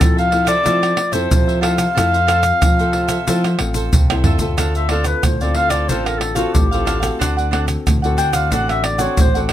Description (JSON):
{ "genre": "samba and choro", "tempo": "92 BPM", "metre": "4/4", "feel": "straight", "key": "F major, D minor from 4.6 s", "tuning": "A4 = 441 Hz", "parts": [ { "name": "warm clarinet", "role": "melody", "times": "0.0-9.4 s", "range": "F#4 to G5", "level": "-19 LUFS", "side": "left 1 dB", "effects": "none" }, { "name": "nylon-string guitar", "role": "accompaniment", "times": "0.0-9.5 s", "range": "A2 to A4", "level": "-24 LUFS", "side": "left 4 dB", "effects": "none" }, { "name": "smooth gliding synth bass", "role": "bass", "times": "0.0-9.5 s", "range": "A1 to F3", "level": "-20 LUFS", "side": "equal", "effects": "none" }, { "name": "tube shaker, surdo, pandeiro and tamborim", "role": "percussion", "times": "0.0-9.5 s", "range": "none", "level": "-18 LUFS", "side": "right 1 dB", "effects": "none" }, { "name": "cavaquinho", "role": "accompaniment", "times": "0.2-9.5 s", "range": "D4 to F#5", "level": "-25 LUFS", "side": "right 5 dB", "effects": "none" } ], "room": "light reverb", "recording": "close, detailed microphones", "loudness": "-14 LUFS", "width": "side -12 dB against mid", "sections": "0.0-4.6 A section; 4.6-9.5 B section", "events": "drum fill 4.1-4.6; clarinet solo 4.6-9.5", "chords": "0.0 Fmaj7; 4.6 Dm7; 7.2 D7", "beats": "0.00 0.66 1.31 | 1.97 2.62 3.28 3.93 | 4.59 5.25 5.90 6.56 | 7.21 7.87 8.53 9.18" }